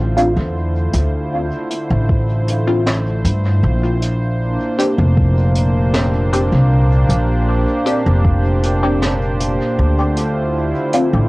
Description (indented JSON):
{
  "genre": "ambient dub",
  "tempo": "78 BPM",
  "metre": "4/4",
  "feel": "straight",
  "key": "unclear",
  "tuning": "A4 = 440 Hz",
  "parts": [
    { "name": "warm analog pad", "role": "sustained chords", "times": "0.0-11.3 s", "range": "Bb2 to C5", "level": "-20 LUFS", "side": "right 1 dB", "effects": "chorus, cassette tape" },
    { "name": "upright bass", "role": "bass", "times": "0.0-11.3 s", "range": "F1 to G2", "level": "-16 LUFS", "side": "equal", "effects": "tube saturation" },
    { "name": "filtered dub chord stab", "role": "stabs", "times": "0.2-11.1 s", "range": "C4 to G4", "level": "-20 LUFS", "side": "left 1 dB", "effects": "phaser, lush chorus, cassette tape, dub echo" },
    { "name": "vintage brush drum kit", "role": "drums", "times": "0.2-11.1 s", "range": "hi-hat, snare drum", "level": "-24 LUFS", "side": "equal", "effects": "cassette tape, dub echo" },
    { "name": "electronic kick drum", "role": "drums", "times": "2.1-8.4 s", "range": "none", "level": "-16 LUFS", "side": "equal", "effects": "cassette tape" }
  ],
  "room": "light reverb, small room ambience",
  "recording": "home recording on cassette",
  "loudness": "-14 LUFS",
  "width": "side -22 dB against mid",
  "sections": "0.0-11.3 A section",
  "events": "fade-in on analog synth pad 0.0-11.3",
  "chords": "0.0 Dm7; 3.6 Bb69; 9.8 Dm7",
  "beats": "| 0.56 1.32 2.09 2.86 | 3.63 4.40 5.17 5.94 | 6.71 7.48 8.25 9.02 | 9.79 10.56"
}